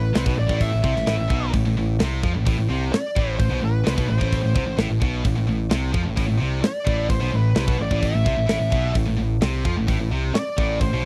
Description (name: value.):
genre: heavy metal.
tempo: 129 BPM.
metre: 4/4.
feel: straight.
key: A minor.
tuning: A4 = 439 Hz.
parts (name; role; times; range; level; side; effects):
high-gain lead guitar; melody; 0.0-11.1 s; B4 to E5; -29 LUFS; equal; distortion, slapback echo.
heavy high-gain guitar; riff; 0.0-11.0 s; A2 to F3; -32 LUFS; equal; distortion.
scooped high-gain guitar; riff; 0.0-11.0 s; A2 to F3; -29 LUFS; equal; distortion.
growling picked electric bass; bass; 0.0-11.0 s; A1 to F2; -26 LUFS; equal; overdrive.
tight metal drum kit; drums; 0.1-10.9 s; hi-hat, kick drum, snare drum; -26 LUFS; equal; none.
room: little or no reverb.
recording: dry, close 1970s-style studio recording.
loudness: -22 LUFS.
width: mono.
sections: 0.0-11.1 A section.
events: none.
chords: 0.0 Am.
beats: 0.14 | 0.61 1.07 1.53 2.00 | 2.46 2.93 3.39 3.85 | 4.32 4.78 5.25 5.71 | 6.17 6.64 7.10 7.57 | 8.03 8.49 8.96 9.42 | 9.88 10.35 10.81.